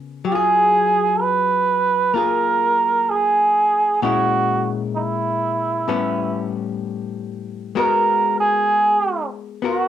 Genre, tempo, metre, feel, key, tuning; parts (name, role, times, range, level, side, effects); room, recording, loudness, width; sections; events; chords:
jazz ballad; 64 BPM; 4/4; swing 67% on 8ths; A4 = 441 Hz
hollow-body jazz guitar; accompaniment; 0.0-9.9 s; A2 to A#4; -24 LUFS; left 9 dB; cassette tape
trumpet with cup mute; melody; 0.3-9.9 s; D#4 to B4; -17 LUFS; right 3 dB; cassette tape
wet studio reverb, RT60 0.6 s; home recording on cassette; -16 LUFS; side -10 dB against mid
0.0-9.9 A section
0.2 F#maj9; 4.0 A#m7b5; 5.9 A9; 7.7 G#m9